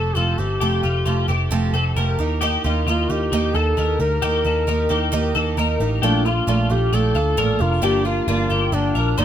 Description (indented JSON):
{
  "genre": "indie pop",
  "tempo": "133 BPM",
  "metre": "4/4",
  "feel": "straight",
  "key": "Bb major",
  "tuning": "A4 = 435 Hz",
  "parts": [
    { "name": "warm duduk", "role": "melody", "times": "0.0-9.2 s", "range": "D4 to Bb4", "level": "-23 LUFS", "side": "left 1 dB", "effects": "none" },
    { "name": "picked twelve-string acoustic guitar", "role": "accompaniment", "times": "0.0-9.2 s", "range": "G2 to G4", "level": "-24 LUFS", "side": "right 6 dB", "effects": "none" },
    { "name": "twelve-string electric guitar", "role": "arpeggios", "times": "0.0-9.2 s", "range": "F4 to C5", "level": "-25 LUFS", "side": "left 5 dB", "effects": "ensemble chorus" },
    { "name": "vintage muted picked electric bass", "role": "bass", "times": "0.0-9.2 s", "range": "F1 to Eb2", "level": "-21 LUFS", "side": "equal", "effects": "none" },
    { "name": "reed electric piano", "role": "accompaniment", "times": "6.0-9.2 s", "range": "Bb3 to A4", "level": "-30 LUFS", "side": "left 6 dB", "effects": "fast tremolo" }
  ],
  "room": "light reverb",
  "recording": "none",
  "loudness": "-17 LUFS",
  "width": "side -10 dB against mid",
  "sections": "0.0-6.0 A section; 6.0-9.2 B section",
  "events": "none",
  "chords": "0.0 Fadd9; 2.2 Eb; 6.0 Bbmaj7; 7.8 Gm7",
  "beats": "0.16 | 0.61 1.06 1.52 1.97 | 2.42 2.87 3.32 3.78 | 4.23 4.68 5.13 5.58 | 6.03 6.48 6.93 7.38 | 7.83 8.28 8.73 9.18"
}